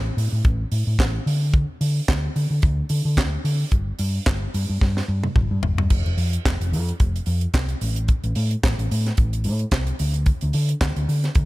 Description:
disco; 110 BPM; 4/4; swing 56% on 16ths; A4 = 437 Hz
hollow-body short-scale fingered electric bass; bass; 0.0-11.5 s; F1 to D3; -22 LUFS; equal
tight funk drum kit; drums; 0.2-11.5 s; crash cymbal, handclaps, hi-hat, kick drum, snare drum, toms; -22 LUFS; equal
little or no reverb; -19 LUFS; side -19 dB against mid
0.0-5.9 A section; 5.9-11.5 B section
drum fill 4.8-5.9

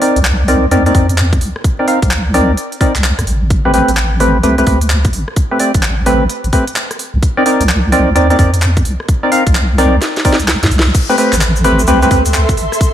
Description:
UK garage, two-step garage; 129 BPM; 4/4; swing 64% on 16ths; A minor; A4 = 440 Hz
percussive organ stab; stabs; 0.0-12.2 s; A3 to F5; -13 LUFS; equal; wide subtle chorus, tape echo
garage drum kit; drums; 0.0-12.9 s; crash cymbal, handclaps, hi-hat, rim click, snare drum; -18 LUFS; equal
deep soft wobble bass; bass; 0.2-12.7 s; A1 to F2; -13 LUFS; equal; chorus, sidechain pumping
electronic kick drum; drums; 0.9-12.9 s; -14 LUFS; equal
tube shaker; percussion; 10.9-12.9 s; -24 LUFS; left 2 dB
ethereal airy pad; texture; 11.4-12.9 s; A4 to C6; -20 LUFS; right 1 dB; ensemble chorus, built-in reverb, sidechain pumping
light reverb; vinyl crackle; -10 LUFS; side -10 dB against mid
0.0-10.9 A section; 10.9-12.9 B section
filter sweep on synth stab 0.0-10.9; drum fill 10.0-10.9; band accent 10.8; drop 10.9-12.9
0.0 Cm9; 3.5 Am9; 7.0 Cm9; 10.9 Am9

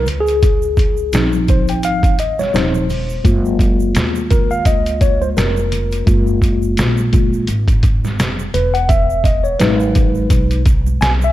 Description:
hip hop, jazz-hop; 85 BPM; 4/4; swing 57% on 16ths; Gb lydian; A4 = 445 Hz
mellow tine electric piano; accompaniment; 0.0-11.3 s; F3 to G#5; -18 LUFS; left 2 dB; medium stereo tremolo
upright bass; bass; 0.0-11.3 s; Eb1 to Eb2; -19 LUFS; equal
trip hop sampler-style drum kit; drums; 0.1-11.2 s; hi-hat, kick drum, snare drum; -16 LUFS; equal
congas and tube shaker; percussion; 0.1-11.3 s; -31 LUFS; right 10 dB
light reverb; -13 LUFS; side -14 dB against mid
0.0-11.3 A section
tine electric piano solo 0.0-11.3
0.1 Dbmaj9; 3.2 Gbmaj9; 8.5 Emaj9

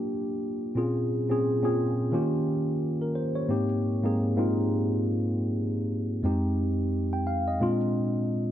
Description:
soul; 87 BPM; 4/4; swing 58% on 16ths; A4 = 440 Hz
tine electric piano; solo; 0.0-8.5 s; F2 to G5; -25 LUFS; equal; wide subtle chorus
light reverb; dark, warm production; -25 LUFS; side -11 dB against mid
0.0-8.5 A section
0.0 Gm7; 0.8 Bbm7; 2.1 Eb7; 3.5 Abmaj7; 6.2 Fm7; 7.6 Bb7

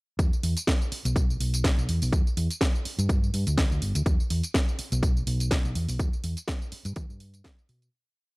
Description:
filtered disco house; 124 BPM; 4/4; swing 55% on 16ths; E minor; A4 = 440 Hz
hollow-body short-scale fingered electric bass; bass; 0.2-7.9 s; G1 to E3; -27 LUFS; equal; sidechain pumping
electronic kick drum; drums; 0.2-7.6 s; -25 LUFS; equal; overdrive
house drum kit; drums; 0.2-7.9 s; hi-hat, snare drum, tambourine; -32 LUFS; equal; overdrive, sidechain pumping on hats, sidechain pumping on perc
little or no reverb; dry, gritty hardware recording; -24 LUFS; side -26 dB against mid
0.2-7.9 drop
drop 0.2-7.9; fade-out 5.4-7.9

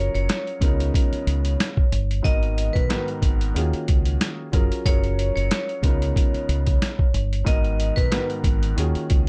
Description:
hip hop, boom-bap hip-hop; 92 BPM; 4/4; swing 55% on 16ths; G# dorian; A4 = 440 Hz
vibraphone with hard mallets; melody; 0.0-8.3 s; B4 to D#5; -32 LUFS; equal; high-pass filter, low-pass filter, slapback echo
dark upright piano; accompaniment; 0.0-9.3 s; G#2 to A#4; -31 LUFS; equal; cassette tape, high-pass filter, low-pass filter
deep dub fingered electric bass; bass; 0.0-9.3 s; F#1 to D#2; -26 LUFS; equal
boom bap sampler-style drum kit; drums; 0.2-9.3 s; hi-hat, kick drum, rim click, snare drum; -24 LUFS; equal
little or no reverb; dark, warm production; -22 LUFS; mono
0.0-9.3 A section
0.0 F#maj9; 0.6 C#13; 2.2 G#m7; 3.6 D#m11; 4.5 F#maj9; 5.8 C#13; 7.5 G#m7; 8.8 D#m11

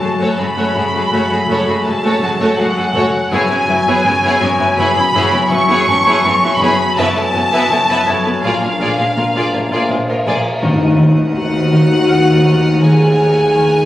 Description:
cinematic, suspense film score; 82 BPM; 5/4; straight; F# minor, Eb minor from 10.6 s; A4 = 440 Hz
rich studio violin section; melody; 0.0-13.9 s; E#5 to C#6; -17 LUFS; equal
rich studio violin section; second line; 0.0-13.9 s; C#4 to Ab5; -20 LUFS; equal
rich studio viola section; accompaniment; 0.0-13.9 s; F3 to Bb4; -21 LUFS; right 1 dB
mellow French horn section; sustained chords; 0.0-13.9 s; G#3 to Ab4; -20 LUFS; left 1 dB
concert harp; riff; 0.0-13.9 s; F#2 to Eb4; -17 LUFS; left 2 dB
rich studio cello section; bass; 0.0-13.9 s; Eb2 to A#2; -26 LUFS; right 1 dB
warm studio double bass section; bass; 0.0-13.9 s; F#1 to Eb2; -22 LUFS; right 2 dB
celesta; texture; 0.0-13.9 s; F4 to G#6; -29 LUFS; left 1 dB
cymbal swell and tam-tam; percussion; 7.0-13.5 s; -24 LUFS; equal
timpani; percussion; 10.6-11.7 s; Eb3; -23 LUFS; equal
sub drop; sound effects; 10.6-13.9 s; -29 LUFS; equal
rich studio violin section; texture; 10.6-13.9 s; Eb6 to Gb6; -27 LUFS; equal
wet scoring stage reverb, RT60 2.0 s; recorded on a phone in the room, club reverb; -11 LUFS; side -14 dB against mid
0.0-10.6 A section; 10.6-13.9 B section
band accent 10.6-11.4; impact 10.6-13.9
0.0 F#madd9; 3.3 C#m7/F#; 8.4 A#7; 10.6 Ebmadd9

